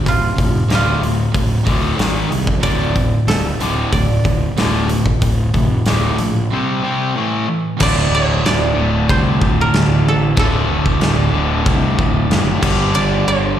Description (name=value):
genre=hard rock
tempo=93 BPM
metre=4/4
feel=straight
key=D minor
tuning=A4 = 439 Hz
part: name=koto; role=melody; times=0.0-13.6 s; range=F4 to D5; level=-22 LUFS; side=right 4 dB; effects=slapback echo, analog delay
part: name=crunchy overdriven guitar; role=riff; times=0.0-13.6 s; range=D2 to C4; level=-20 LUFS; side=left 7 dB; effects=slapback echo
part: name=overdriven electric guitar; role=riff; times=0.0-13.6 s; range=D2 to C4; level=-21 LUFS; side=right 7 dB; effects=none
part: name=fuzz fingered electric bass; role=bass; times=0.1-13.6 s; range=D1 to C2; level=-19 LUFS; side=equal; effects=overdrive
part: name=big rock drum kit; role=drums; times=0.1-13.1 s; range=crash cymbal, hi-hat, kick drum, snare drum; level=-19 LUFS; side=equal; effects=none
part: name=overdriven tonewheel organ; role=sustained chords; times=7.8-13.6 s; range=G3 to A5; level=-29 LUFS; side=right 1 dB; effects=none
room=light reverb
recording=live gig heard through the venue's PA, recital hall reverb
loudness=-13 LUFS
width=side -10 dB against mid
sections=0.0-7.8 A section; 7.8-13.6 B section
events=break 6.5-7.8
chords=0.0 Dm; 2.0 G#5; 2.6 D5; 6.5 C5; 7.2 A5; 7.8 D5; 12.6 G5